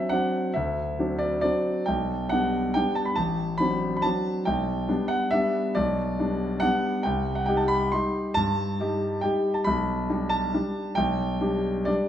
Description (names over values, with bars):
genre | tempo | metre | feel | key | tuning
classical, piano waltz | 138 BPM | 3/4 | uneven beats, rubato | G major | A4 = 444 Hz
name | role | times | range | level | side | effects
warm grand piano | solo | 0.0-12.1 s | A1 to C6 | -23 LUFS | equal | none
room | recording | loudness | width
moderate recital hall reverb, RT60 1.6 s | none | -23 LUFS | side -10 dB against mid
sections
0.0-12.1 A section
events
none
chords
0.0 D7; 1.9 G/B; 3.2 D7/A; 4.5 G/B; 7.0 Cm; 9.7 G/B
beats
0.12 | 0.56 0.98 1.43 | 1.87 2.31 2.75 | 3.18 3.60 4.04 | 4.47 4.89 5.33 | 5.77 6.18 6.62 | 7.04 7.47 7.92 | 8.36 8.78 9.23 | 9.66 10.09 10.54 | 10.98 11.41 11.88